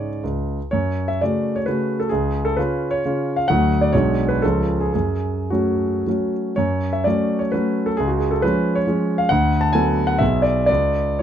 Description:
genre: classical, romantic triple-time dance for piano with dotted rhythms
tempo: 101-145 BPM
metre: 3/4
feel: rubato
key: F# minor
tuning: A4 = 443 Hz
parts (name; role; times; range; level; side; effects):
- warm concert grand piano; solo; 0.0-11.2 s; B1 to A5; -18 LUFS; equal; none
room: light reverb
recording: dark, warm production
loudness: -18 LUFS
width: side -9 dB against mid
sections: 0.0-6.6 A section; 6.6-11.2 A section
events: none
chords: 0.0 C#5; 0.7 F#m; 2.1 C#; 3.5 D; 3.9 G#m7b5/B; 4.4 C#; 4.9 F#m; 8.0 C#; 9.3 D6; 10.2 G#m7b5/B; 10.7 N.C.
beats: 0.23 | 0.72 1.21 1.67 | 2.11 2.57 3.04 | 3.47 3.94 4.42 | 4.94 5.51 6.06 | 6.57 7.05 7.53 | 7.99 8.43 8.88 | 9.30 9.74 10.21 | 10.69 11.21

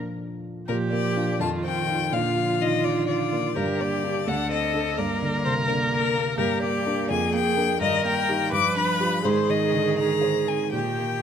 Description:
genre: quick classical-period movement for piano quartet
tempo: 84 BPM (dotted quarters)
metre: 6/8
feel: rubato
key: Bb major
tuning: A4 = 441 Hz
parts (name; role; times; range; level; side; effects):
- dark baby grand piano; accompaniment; 0.0-11.2 s; D2 to C5; -27 LUFS; right 1 dB; none
- rich violin; melody; 0.7-11.2 s; Bb4 to D6; -26 LUFS; left 10 dB; none
- clear cello; second line; 0.7-11.2 s; D3 to Bb3; -32 LUFS; right 4 dB; none
- bright viola; accompaniment; 0.7-11.2 s; F4 to B4; -27 LUFS; right 4 dB; none
room: moderate recital hall reverb, RT60 1.5 s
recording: close, detailed microphones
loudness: -21 LUFS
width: side -8 dB against mid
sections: 0.7-11.2 A section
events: none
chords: 0.0 Bb; 1.4 F5; 2.1 Bb; 3.6 Gm; 4.3 D5; 5.0 Gm; 7.1 Bb7/F; 7.8 Eb/G; 8.5 G7; 9.2 Ab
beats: | 0.68 1.41 | 2.13 2.85 | 3.56 4.27 | 4.98 5.68 | 6.38 7.10 | 7.81 8.52 | 9.24 9.97 | 10.73

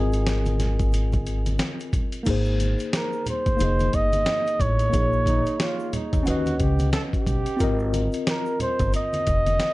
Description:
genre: hip hop, jazz-hop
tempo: 90 BPM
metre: 4/4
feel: swing 59% on 16ths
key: Ab major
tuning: A4 = 440 Hz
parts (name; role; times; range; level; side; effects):
- mellow flugelhorn; melody; 0.0-9.7 s; Ab4 to Eb5; -26 LUFS; right 1 dB; plate reverb, tape echo
- mellow tine electric piano; accompaniment; 0.0-9.7 s; Bb3 to F#5; -28 LUFS; left 2 dB; medium stereo tremolo, plate reverb
- upright bass; bass; 0.0-9.6 s; F1 to Eb2; -24 LUFS; equal; none
- dusty soul sampler-style drum kit; drums; 0.1-9.7 s; crash cymbal, hi-hat, kick drum, snare drum; -27 LUFS; equal; none
- tube shaker and congas; percussion; 0.1-9.7 s; none; -35 LUFS; right 1 dB; none
- clear trombone; second line; 5.3-8.1 s; Eb4 to A4; -31 LUFS; right 4 dB; plate reverb
room: light reverb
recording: dark, warm production, nothing above 11.0 kHz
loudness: -21 LUFS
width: side -19 dB against mid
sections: 0.0-2.3 A section; 2.3-9.7 B section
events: none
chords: 0.0 Ab69; 2.3 Abadd9; 3.6 Fm9; 4.9 Bbm7; 6.3 Badd9; 7.6 Ab69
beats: 0.27 0.94 1.60 | 2.27 2.94 3.60 4.27 | 4.94 5.60 6.27 6.94 | 7.60 8.27 8.94 9.60

